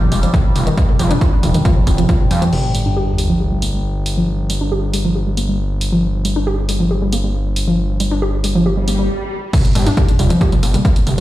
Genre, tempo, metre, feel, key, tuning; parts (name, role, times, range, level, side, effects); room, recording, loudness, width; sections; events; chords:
driving peak-time techno; 137 BPM; 4/4; straight; G minor; A4 = 437 Hz
warbly dusty pluck; riff; 0.0-11.2 s; Eb3 to G4; -19 LUFS; equal; chorus, sidechain pumping, ping-pong delay
overtone-sweeping drone; drone; 0.0-2.6 s; G2 to G3; -26 LUFS; left 2 dB; chorus, built-in reverb, sidechain pumping
punchy analog drum machine; drums; 0.0-11.2 s; crash cymbal, hi-hat, toms; -23 LUFS; right 1 dB; sidechain pumping on hats, sidechain pumping on toms, sidechain pumping on cymbals
gritty driven synth bass; bass; 0.1-11.2 s; Eb1 to F2; -18 LUFS; equal; tube saturation, sidechain pumping
electronic kick drum; drums; 0.3-2.2, 9.5-10.9 s; -14 LUFS; equal
sub drop and swell; sound effects; 2.5-4.3, 8.8-11.2 s; -22 LUFS; equal
light reverb; played on a big sound system in a bare room, stone room reverb; -14 LUFS; side -15 dB against mid
0.0-2.5 A section; 2.5-9.5 B section; 9.5-11.2 C section
impact 2.5-4.3, 9.5-11.2; filter sweep on synth arpeggio sound 2.5-9.5; swell 8.8-9.5; stop 9.1-9.5; drop 9.5-11.2